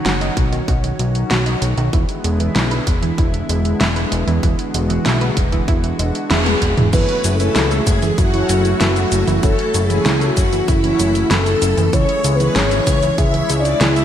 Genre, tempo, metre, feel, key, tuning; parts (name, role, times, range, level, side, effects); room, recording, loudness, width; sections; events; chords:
synthwave; 96 BPM; 4/4; straight; F# minor; A4 = 441 Hz
lush unison pad; sustained chords; 0.0-14.0 s; C#3 to F#4; -24 LUFS; left 1 dB; chorus, sidechain pumping
analog pluck; arpeggios; 0.0-14.0 s; D#3 to E5; -24 LUFS; right 5 dB; chorus, ping-pong delay
fat analog bass; bass; 0.1-14.0 s; E1 to C#2; -19 LUFS; equal
pop drum kit; drums; 0.1-14.0 s; cabasa, crash cymbal, hi-hat, snare drum, toms; -21 LUFS; equal; small room ambience, gated reverb
electronic kick drum; drums; 0.4-13.3 s; -18 LUFS; equal; small room ambience
soft octave-layered synth lead; melody; 6.3-14.0 s; E4 to E5; -20 LUFS; left 1 dB; chorus, tremolo, cassette tape, ping-pong delay
string machine, violins; second line; 6.9-14.0 s; E4 to E5; -25 LUFS; left 1 dB; ensemble chorus, ping-pong delay
mellow synth brass; stabs; 6.9-13.9 s; A3 to C#5; -27 LUFS; left 3 dB; chorus, cassette tape, ping-pong delay
light reverb, digital ambience; bright 1980s-style digital production; -14 LUFS; side -10 dB against mid
0.0-6.9 A section; 6.9-14.0 B section
drum fill 6.3-6.9; band accent 6.3-6.6
0.0 B; 1.9 E7; 6.9 F#m7; 11.9 C#m